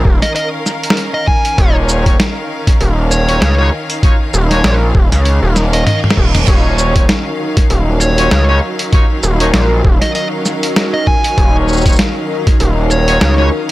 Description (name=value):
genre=glitch hop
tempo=98 BPM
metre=4/4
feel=swing 56% on 16ths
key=Eb minor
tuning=A4 = 440 Hz
part: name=rich studio string section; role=sustained chords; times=0.0-13.7 s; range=Eb3 to F5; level=-21 LUFS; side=equal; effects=sidechain pumping
part: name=gritty driven synth bass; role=bass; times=0.0-13.5 s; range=Eb1 to Db2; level=-12 LUFS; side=equal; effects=distortion, overdrive
part: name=electronic kick drum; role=drums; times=0.1-12.6 s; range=none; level=-12 LUFS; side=equal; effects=none
part: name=dark smooth lead guitar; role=melody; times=0.2-13.5 s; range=Db5 to Ab5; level=-20 LUFS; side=equal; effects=overdrive, digital delay
part: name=boom bap sampler-style drum kit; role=drums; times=0.2-13.7 s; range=crash cymbal, hi-hat, shaker, snare drum, toms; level=-16 LUFS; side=equal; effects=none
part: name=brilliant horn section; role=stabs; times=1.6-13.5 s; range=Db4 to Db5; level=-21 LUFS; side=left 1 dB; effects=vintage 12-bit sampler grit, sidechain pumping, digital delay
part: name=reverse cymbal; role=sound effects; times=5.7-6.5 s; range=none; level=-23 LUFS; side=right 6 dB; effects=none
part: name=airy breathy pad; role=texture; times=6.5-13.7 s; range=Eb4 to Bb4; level=-22 LUFS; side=left 1 dB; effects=chorus, sidechain pumping
room=little or no reverb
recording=none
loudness=-10 LUFS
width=side -17 dB against mid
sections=0.0-13.7 A section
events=drum fill 5.6-6.5; reverse cymbal 5.7-6.5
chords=0.0 Ebm9